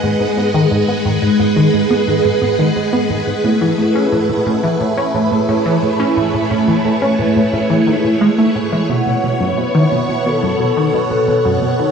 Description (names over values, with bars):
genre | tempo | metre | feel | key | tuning
ambient, sequencer-driven space music | 88 BPM | 4/4 | straight | unclear | A4 = 442 Hz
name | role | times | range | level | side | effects
phased string machine | sustained chords | 0.0-11.9 s | B2 to F#5 | -15 LUFS | right 1 dB | ensemble chorus, phaser
tight sequenced synth | riff | 0.0-11.9 s | F#2 to C#4 | -16 LUFS | equal | chorus, phaser, tape echo
expressive synth lead | melody | 8.9-11.9 s | A4 to F#5 | -20 LUFS | left 2 dB | analog chorus, tape echo
room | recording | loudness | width
wet plate reverb, RT60 2.6 s | dreamy mix soaked in reverb, small room ambience | -13 LUFS | side -6 dB against mid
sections
0.0-11.9 A section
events
none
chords
0.0 G#m7; 3.4 Amaj7; 8.9 B7sus4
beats
0.03 | 0.71 1.40 2.08 2.76 | 3.44 4.12 4.80 5.49 | 6.17 6.85 7.53 8.21 | 8.90 9.58 10.26 10.94 | 11.62